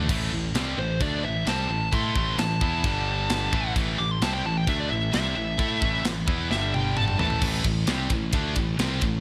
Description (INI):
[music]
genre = heavy metal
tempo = 131 BPM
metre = 4/4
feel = straight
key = A minor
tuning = A4 = 440 Hz
[part]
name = heavy high-gain guitar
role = riff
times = 0.0-9.2 s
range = G2 to A4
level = -33 LUFS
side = equal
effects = distortion
[part]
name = high-gain distorted guitar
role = riff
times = 0.0-9.2 s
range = G2 to A4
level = -34 LUFS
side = equal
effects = distortion
[part]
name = modern bright picked electric bass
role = bass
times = 0.0-9.2 s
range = G1 to A2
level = -32 LUFS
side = equal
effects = none
[part]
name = tight metal drum kit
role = drums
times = 0.1-9.1 s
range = china cymbal, crash cymbal, kick drum, ride cymbal, snare drum, toms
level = -30 LUFS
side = equal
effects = none
[part]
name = high-gain lead guitar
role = melody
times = 0.8-7.4 s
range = C5 to D6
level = -31 LUFS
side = equal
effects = distortion, tape echo
[sound]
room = small room ambience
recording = none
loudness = -25 LUFS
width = mono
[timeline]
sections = 0.0-7.4 A section; 7.4-9.2 B section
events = lead electric guitar solo 0.0-7.4; drum fill 6.5-7.4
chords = 0.0 Am; 2.8 G5; 3.5 Am; 6.5 G5; 7.2 A5; 7.4 Am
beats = | 0.10 0.55 1.01 1.47 | 1.93 2.38 2.84 3.30 | 3.76 4.21 4.67 5.13 | 5.59 6.05 6.50 6.96 | 7.42 7.88 8.34 8.80